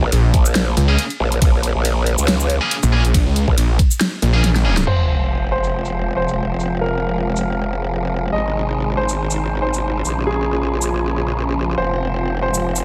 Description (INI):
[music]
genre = heavy wobble dubstep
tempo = 139 BPM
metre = 4/4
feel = swing 55% on 16ths, half-time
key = F minor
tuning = A4 = 440 Hz
[part]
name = growl bass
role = bass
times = 0.0-12.8 s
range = F1 to Db2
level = -23 LUFS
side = equal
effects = chorus, overdrive
[part]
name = snarling distorted saw bass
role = bass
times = 0.1-4.9 s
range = Bb1 to Db2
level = -17 LUFS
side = equal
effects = overdrive
[part]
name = dubstep drum kit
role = drums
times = 0.1-12.8 s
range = crash cymbal, hi-hat, ride cymbal, shaker, snare drum, toms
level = -25 LUFS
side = equal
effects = low-pass filter on hats, low-pass filter on perc, low-pass filter on snare, low-pass filter on cymbals, low-pass filter on toms
[part]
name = electronic kick drum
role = drums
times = 0.3-3.9 s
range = none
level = -17 LUFS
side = equal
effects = none
[part]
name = high-gain distorted guitar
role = stabs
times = 0.9-4.7 s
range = Bb3 to Ab4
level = -25 LUFS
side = equal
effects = distortion, tape echo
[part]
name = clear grand piano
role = melody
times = 4.9-12.8 s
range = Ab4 to Eb5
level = -27 LUFS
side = equal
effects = vintage 12-bit sampler grit, tape echo
[part]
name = supersaw pad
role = sustained chords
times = 4.9-12.8 s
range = Ab2 to Ab4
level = -27 LUFS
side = equal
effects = phaser, sidechain pumping, low-pass filter
[part]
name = sub drop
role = sound effects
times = 4.9-6.6 s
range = none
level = -24 LUFS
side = equal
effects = none
[sound]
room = digital ambience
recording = none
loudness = -18 LUFS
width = mono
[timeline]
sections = 0.0-4.9 A section; 4.9-12.8 B section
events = drop 0.0-4.9; drum fill 4.4-4.9; impact 4.9-6.6; filter sweep on supersaw synth 4.9-12.8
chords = 0.0 Bbm7; 4.9 Fm; 8.3 Ab; 10.1 Bbm; 11.8 Fm